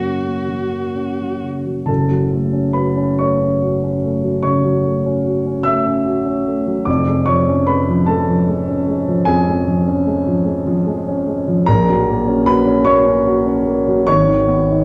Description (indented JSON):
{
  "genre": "classical, romantic duo for cello and grand piano",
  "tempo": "42-51 BPM (dotted quarters)",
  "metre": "12/8",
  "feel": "rubato",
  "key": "F# minor, F# major from 11.7 s",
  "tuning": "A4 = 444 Hz",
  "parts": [
    { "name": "rich cello", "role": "melody", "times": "0.0-1.4 s", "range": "F#4", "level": "-28 LUFS", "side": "equal", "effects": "none" },
    { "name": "dark baby grand piano", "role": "accompaniment", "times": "0.0-14.8 s", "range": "E#1 to E6", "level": "-16 LUFS", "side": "equal", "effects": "none" }
  ],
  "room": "wet recital hall reverb, RT60 1.5 s",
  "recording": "heard from further back in the room",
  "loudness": "-17 LUFS",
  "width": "mono",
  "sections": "0.0-1.9 A section; 1.9-14.8 B section",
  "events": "none",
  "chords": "0.0 F#; 1.9 F#m; 6.9 C#/E#; 11.7 F#/A#; 14.1 G#m"
}